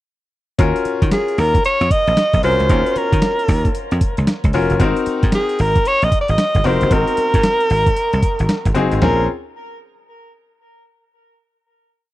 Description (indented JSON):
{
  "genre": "R&B, new jack swing",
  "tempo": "114 BPM",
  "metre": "4/4",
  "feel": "swing 63% on 16ths",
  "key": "unclear",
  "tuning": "A4 = 439 Hz",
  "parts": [
    { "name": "clear concert grand piano", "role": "accompaniment", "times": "0.6-9.3 s", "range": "C4 to Bb4", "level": "-22 LUFS", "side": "left 4 dB", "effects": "none" },
    { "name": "dry thumbed slap bass", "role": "bass", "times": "0.6-9.3 s", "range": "F1 to Eb3", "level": "-18 LUFS", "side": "equal", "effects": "none" },
    { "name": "dusty soul sampler-style drum kit", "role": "drums", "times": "0.6-9.2 s", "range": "hi-hat, kick drum, snare drum, toms", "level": "-18 LUFS", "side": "equal", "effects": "overdrive" },
    { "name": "breathy alto saxophone", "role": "melody", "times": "1.1-9.3 s", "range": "Ab4 to Eb5", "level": "-18 LUFS", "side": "right 1 dB", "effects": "tape echo" }
  ],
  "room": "little or no reverb",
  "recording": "dry, close 1970s-style studio recording",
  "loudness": "-14 LUFS",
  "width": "side -16 dB against mid",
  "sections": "0.6-9.0 pre-chorus; 9.0-11.1 final chord",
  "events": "none",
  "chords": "0.6 Ebm9; 4.8 Ab9; 9.0 Bbm7"
}